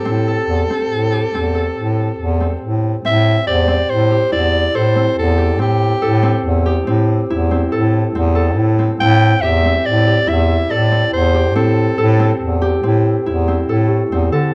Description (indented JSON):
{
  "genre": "contemporary instrumental, chamber music in an uneven meter",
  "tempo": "141 BPM",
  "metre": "7/4",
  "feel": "straight",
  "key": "A minor",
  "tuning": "A4 = 441 Hz",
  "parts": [
    { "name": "breathy soprano saxophone", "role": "melody", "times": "0.0-12.4 s", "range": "G4 to G5", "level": "-20 LUFS", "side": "equal", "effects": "none" },
    { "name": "Celtic harp", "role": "arpeggios", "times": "0.0-14.5 s", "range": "C4 to A4", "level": "-23 LUFS", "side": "equal", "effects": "none" },
    { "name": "clear bass clarinet", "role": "bass", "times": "0.0-14.5 s", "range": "E2 to D3", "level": "-18 LUFS", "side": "equal", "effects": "none" },
    { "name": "worn celesta", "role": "texture", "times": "3.5-7.6, 13.9-14.5 s", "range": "G4 to C5", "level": "-28 LUFS", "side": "equal", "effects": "none" }
  ],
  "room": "moderate recital hall reverb, RT60 1.4 s",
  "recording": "dark, warm production",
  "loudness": "-16 LUFS",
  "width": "mono",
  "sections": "0.0-3.0 A section; 3.0-14.5 B section",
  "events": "none",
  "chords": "0.0 Am7"
}